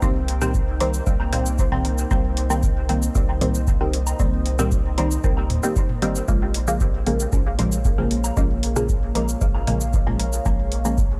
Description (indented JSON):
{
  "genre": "dub techno",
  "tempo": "115 BPM",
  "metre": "4/4",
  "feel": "straight",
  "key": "C phrygian",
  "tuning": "A4 = 439 Hz",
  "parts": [
    { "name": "deep dark ambient pad", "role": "sustained chords", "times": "0.0-11.2 s", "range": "Bb3 to G5", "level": "-34 LUFS", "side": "equal", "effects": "chorus, built-in reverb, sidechain pumping" },
    { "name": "filtered dub chord stab", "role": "stabs", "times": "0.0-11.0 s", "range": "Db3 to C4", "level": "-27 LUFS", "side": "equal", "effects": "chorus, phaser, vintage 12-bit sampler grit, sidechain pumping, dub echo" },
    { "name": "pure sine sub bass", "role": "bass", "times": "0.0-11.2 s", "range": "G1 to Eb2", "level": "-27 LUFS", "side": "equal", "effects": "tube saturation, sidechain pumping" },
    { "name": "electronic cabasa and hi-hat", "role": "drums", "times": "0.0-11.1 s", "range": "none", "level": "-34 LUFS", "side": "equal", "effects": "none" },
    { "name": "electronic kick drum", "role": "drums", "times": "0.0-11.1 s", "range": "none", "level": "-24 LUFS", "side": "equal", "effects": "none" },
    { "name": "electronic toms and woodblock", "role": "percussion", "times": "0.4-10.3 s", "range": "none", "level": "-35 LUFS", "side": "equal", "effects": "sidechain pumping on perc, sidechain pumping on toms, dub echo" }
  ],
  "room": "little or no reverb",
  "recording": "none",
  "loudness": "-21 LUFS",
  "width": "mono",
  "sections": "0.0-11.2 A section",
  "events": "none",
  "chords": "0.0 Cm7; 6.3 Bbm7",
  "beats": "| 0.02 0.54 1.06 1.59 | 2.11 2.63 3.15 3.67 | 4.20 4.72 5.24 5.76 | 6.28 6.80 7.33 7.85 | 8.37 8.89 9.41 9.94 | 10.46 10.98"
}